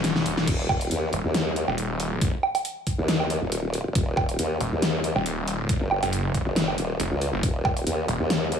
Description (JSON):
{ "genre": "heavy wobble dubstep", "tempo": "138 BPM", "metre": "4/4", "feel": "swing 54% on 16ths, half-time", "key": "Eb minor", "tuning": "A4 = 445 Hz", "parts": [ { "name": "muted studio string section", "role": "sustained chords", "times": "0.0-0.5 s", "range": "Eb3 to Db6", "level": "-44 LUFS", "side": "right 1 dB", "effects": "none" }, { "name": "snarling distorted saw bass", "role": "bass", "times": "0.0-8.2 s", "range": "Eb1 to Gb1", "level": "-26 LUFS", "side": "equal", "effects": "distortion, overdrive" }, { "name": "dubstep drum kit", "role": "drums", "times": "0.0-8.6 s", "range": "crash cymbal, hi-hat, snare drum, woodblock", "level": "-26 LUFS", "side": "equal", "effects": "overdrive" }, { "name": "formant-sweep wobble bass", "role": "bass", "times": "0.5-8.6 s", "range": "Eb1 to Eb2", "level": "-26 LUFS", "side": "equal", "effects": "chorus, overdrive" }, { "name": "electronic kick drum", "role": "drums", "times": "0.5-7.7 s", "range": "none", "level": "-25 LUFS", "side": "equal", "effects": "overdrive" } ], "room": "digital ambience", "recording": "studio ambience", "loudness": "-23 LUFS", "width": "side -7 dB against mid", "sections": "0.5-8.6 A section", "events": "drum fill 0.0-0.5; drop 0.5-8.6", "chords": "0.5 Ebm" }